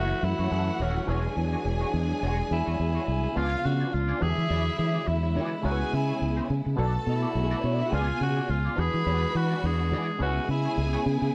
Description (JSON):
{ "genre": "disco", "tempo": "105 BPM", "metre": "4/4", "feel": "swing 56% on 16ths", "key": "unclear", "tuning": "A4 = 440 Hz", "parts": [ { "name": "breathy tenor saxophone", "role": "melody", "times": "0.0-11.0 s", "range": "C#4 to G#4", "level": "-34 LUFS", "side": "equal", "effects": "none" }, { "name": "dark studio string section", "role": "second line", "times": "0.0-11.3 s", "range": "G#3 to B5", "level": "-36 LUFS", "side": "equal", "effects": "none" }, { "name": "auto-wah clav", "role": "accompaniment", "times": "0.0-11.3 s", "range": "B2 to C#5", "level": "-40 LUFS", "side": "equal", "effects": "none" }, { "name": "clean electric guitar", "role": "accompaniment", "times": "0.0-11.3 s", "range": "G#3 to D5", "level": "-41 LUFS", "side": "equal", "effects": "wah, subtle chorus" }, { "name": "clear studio string section", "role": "sustained chords", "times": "0.0-11.3 s", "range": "B2 to F#4", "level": "-37 LUFS", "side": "equal", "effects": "none" }, { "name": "fingered electric bass", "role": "bass", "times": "0.0-11.3 s", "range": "D#1 to E3", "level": "-30 LUFS", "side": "equal", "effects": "none" } ], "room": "light reverb", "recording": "dry, close 1970s-style studio recording", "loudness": "-27 LUFS", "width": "mono", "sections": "0.0-3.4 A section; 3.4-11.3 B section", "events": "none", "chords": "0.0 F#m7; 1.1 E13; 3.4 C#7b9; 4.2 E9; 5.6 C#m7; 6.8 Bm7; 7.9 C#7b9; 8.8 E9; 10.2 C#m7" }